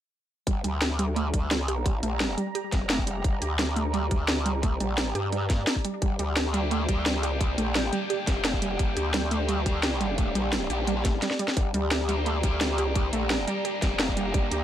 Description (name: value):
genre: dark technical drum and bass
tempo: 173 BPM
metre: 4/4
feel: straight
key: G minor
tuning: A4 = 442 Hz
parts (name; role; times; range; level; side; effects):
- sweeping resonant pad; sustained chords; 0.5-14.6 s; G4 to Bb5; -34 LUFS; equal; chorus, sidechain pumping
- analog pluck; arpeggios; 0.5-14.6 s; G3 to G4; -31 LUFS; right 3 dB; chorus, vintage 12-bit sampler grit, sidechain pumping, ping-pong delay
- growl bass; bass; 0.5-14.6 s; F1 to G2; -29 LUFS; equal; chorus, sidechain pumping
- drum and bass drum kit; drums; 0.5-14.6 s; hi-hat, snare drum; -29 LUFS; equal; small room ambience
- electronic kick drum; drums; 0.5-14.4 s; none; -26 LUFS; equal; small room ambience
- distorted electric guitar; stabs; 6.5-14.6 s; Bb3 to G4; -34 LUFS; left 2 dB; distortion, ping-pong delay
room: light reverb, digital ambience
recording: none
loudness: -24 LUFS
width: side -11 dB against mid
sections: 0.5-14.6 A section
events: filter sweep on synth arpeggio sound 0.5-14.6; drum fill 11.2-11.6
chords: 0.5 Gm